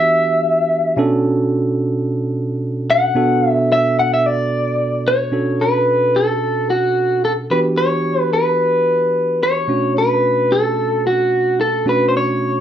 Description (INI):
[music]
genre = blues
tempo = 110 BPM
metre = 4/4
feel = straight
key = B minor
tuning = A4 = 439 Hz
[part]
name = electric guitar through a small old amp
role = melody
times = 0.0-12.6 s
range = F#4 to F#5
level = -15 LUFS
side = equal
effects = slapback echo
[part]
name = bright tine electric piano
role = accompaniment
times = 0.0-12.6 s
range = B2 to A4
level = -19 LUFS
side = right 2 dB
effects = none
[sound]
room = wet studio reverb, RT60 0.7 s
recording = none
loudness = -14 LUFS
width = side -10 dB against mid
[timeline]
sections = 0.0-5.3 A section; 5.3-12.6 B section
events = clean electric guitar solo 0.0-5.3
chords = 0.0 Em9; 1.0 Bm9; 7.5 Em9; 9.7 Bm9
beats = 0.45 | 0.99 1.53 2.07 2.62 | 3.16 3.70 4.24 4.79 | 5.33 5.87 6.42 6.96 | 7.51 8.05 8.60 9.14 | 9.69 10.23 10.78 11.32 | 11.87 12.41